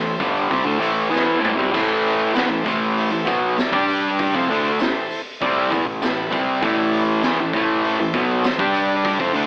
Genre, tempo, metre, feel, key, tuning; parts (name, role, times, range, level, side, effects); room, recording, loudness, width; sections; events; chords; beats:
garage rock duo or trio; 98 BPM; 4/4; straight; A minor; A4 = 439 Hz
combo organ; sustained chords; 0.0-9.5 s; D4 to D5; -26 LUFS; equal; cassette tape
fuzz guitar; riff; 0.0-9.5 s; G2 to G4; -18 LUFS; equal; distortion, cassette tape
raw garage drum kit; drums; 0.2-9.5 s; crash cymbal, hi-hat, kick drum, snare drum, toms; -25 LUFS; equal; cassette tape
tambourine; percussion; 0.2-9.4 s; -41 LUFS; equal
light reverb, small room reverb; home recording on cassette, AM radio sound; -17 LUFS; side -38 dB against mid
0.0-9.5 A section
drum fill 1.1-1.7
0.0 Am; 3.7 G5; 4.3 Am; 8.6 G5
0.51 1.12 | 1.74 2.35 2.96 3.58 | 4.19 4.80 5.41 6.02 | 6.62 7.23 7.84 8.45 | 9.05